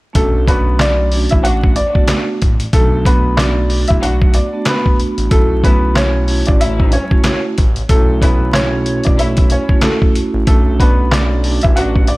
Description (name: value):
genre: hip hop, boom-bap hip-hop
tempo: 93 BPM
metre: 4/4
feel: swing 58% on 16ths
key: B minor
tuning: A4 = 440 Hz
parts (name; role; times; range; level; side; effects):
- vibraphone with soft mallets; accompaniment; 0.1-12.1 s; A3 to F#4; -20 LUFS; right 3 dB; high-pass filter, low-pass filter
- trip hop sampler-style drum kit; drums; 0.1-12.2 s; handclaps, hi-hat, kick drum, snare drum; -14 LUFS; equal; none
- bright upright piano; melody; 0.2-12.2 s; A3 to F#5; -19 LUFS; equal; high-pass filter, low-pass filter, digital delay
- smooth synth bass; bass; 0.2-12.1 s; A1 to B1; -17 LUFS; equal; none
- dark studio string section; stabs; 0.5-12.0 s; A3 to F#4; -26 LUFS; left 2 dB; high-pass filter, low-pass filter, digital delay
room: little or no reverb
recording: vinyl crackle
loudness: -11 LUFS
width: side -21 dB against mid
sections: 0.2-12.2 A section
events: none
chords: 0.2 Bm7; 2.7 D6; 5.3 F#m7